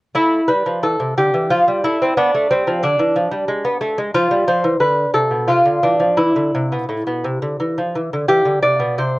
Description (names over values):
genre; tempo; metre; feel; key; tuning
classical, baroque-style dance for lute; 84-93 BPM; 3/4; rubato; A minor; A4 = 439 Hz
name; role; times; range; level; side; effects
lute; solo; 0.1-9.2 s; A2 to D5; -15 LUFS; equal; none
room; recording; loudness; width
moderate small room reverb, RT60 0.5 s; worn, warbling old tape, cassette tape, warbly pitch drift; -15 LUFS; side -20 dB against mid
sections
0.1-9.2 A section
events
none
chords
0.1 Am; 1.5 F; 2.2 Bm7b5 (rootless); 3.5 G#dim; 4.1 F5; 6.2 Am; 7.6 Dmadd9; 8.3 C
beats
| 0.15 0.84 1.51 | 2.18 2.84 3.49 | 4.14 4.82 5.50 | 6.20 6.91 7.61 | 8.30 8.99